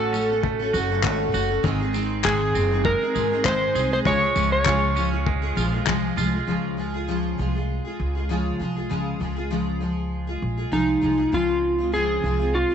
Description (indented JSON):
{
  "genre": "acoustic pop",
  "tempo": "99 BPM",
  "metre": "4/4",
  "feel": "swing 55% on 16ths",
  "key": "Db major",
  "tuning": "A4 = 440 Hz",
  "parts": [
    { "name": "electric slide guitar", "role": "melody", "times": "0.0-6.1, 10.7-12.7 s", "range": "Eb4 to Db5", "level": "-22 LUFS", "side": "equal", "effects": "none" },
    { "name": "picked steel-string acoustic guitar", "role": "accompaniment", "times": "0.0-12.7 s", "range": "Ab2 to A4", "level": "-26 LUFS", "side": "left 1 dB", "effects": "double-tracked left and right" },
    { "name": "clean electric guitar", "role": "arpeggios", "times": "0.0-7.0 s", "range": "Eb3 to Ab4", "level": "-30 LUFS", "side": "right 13 dB", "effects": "spring reverb" },
    { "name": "upright bass", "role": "bass", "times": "0.0-12.6 s", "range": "Gb1 to Db2", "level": "-27 LUFS", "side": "equal", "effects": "none" },
    { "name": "cloth-damped thuddy drum kit", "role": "drums", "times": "0.1-6.3 s", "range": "handclaps, kick drum, tambourine", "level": "-28 LUFS", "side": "left 6 dB", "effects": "none" },
    { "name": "group handclap", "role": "percussion", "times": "1.0-6.0 s", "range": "none", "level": "-36 LUFS", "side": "left 15 dB", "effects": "none" }
  ],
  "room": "light reverb, studio ambience",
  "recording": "1960s-style stereo with parts hard left and right, nothing above 8.0 kHz",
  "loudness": "-20 LUFS",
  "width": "side -8 dB against mid",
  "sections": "0.0-6.5 A section; 6.5-11.3 B section; 11.3-12.7 C section",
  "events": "none",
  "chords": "0.0 Gbm/A; 1.6 Ab; 4.1 Db; 11.3 Dbmaj7"
}